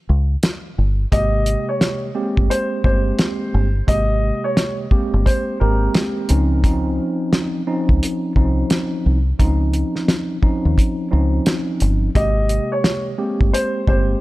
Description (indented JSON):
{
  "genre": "hip hop, boom-bap hip-hop",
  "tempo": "87 BPM",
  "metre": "4/4",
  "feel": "swing 62% on 16ths",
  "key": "Ab major",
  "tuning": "A4 = 441 Hz",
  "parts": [
    { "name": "deep dub fingered electric bass", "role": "bass", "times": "0.1-14.1 s", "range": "G1 to Eb2", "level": "-17 LUFS", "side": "equal", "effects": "none" },
    { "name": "cloth-damped thuddy drum kit", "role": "drums", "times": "0.4-14.1 s", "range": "hi-hat, kick drum, snare drum", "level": "-18 LUFS", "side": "equal", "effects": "none" },
    { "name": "dark upright piano", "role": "melody", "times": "1.1-5.9, 12.2-14.2 s", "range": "Bb4 to Eb5", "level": "-23 LUFS", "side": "equal", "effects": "high-pass filter, low-pass filter, tape echo" },
    { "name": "mellow tine electric piano", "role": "accompaniment", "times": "1.1-14.2 s", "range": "C3 to G4", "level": "-22 LUFS", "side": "right 1 dB", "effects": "medium stereo tremolo, cassette tape, high-pass filter, low-pass filter" }
  ],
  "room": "small room ambience",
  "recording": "none",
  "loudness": "-16 LUFS",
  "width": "side -18 dB against mid",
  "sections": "0.0-14.2 A section",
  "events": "break 0.0-1.1",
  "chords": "0.0 N.C.; 1.1 Abmaj9; 6.3 Dbmaj9; 12.2 Abmaj9"
}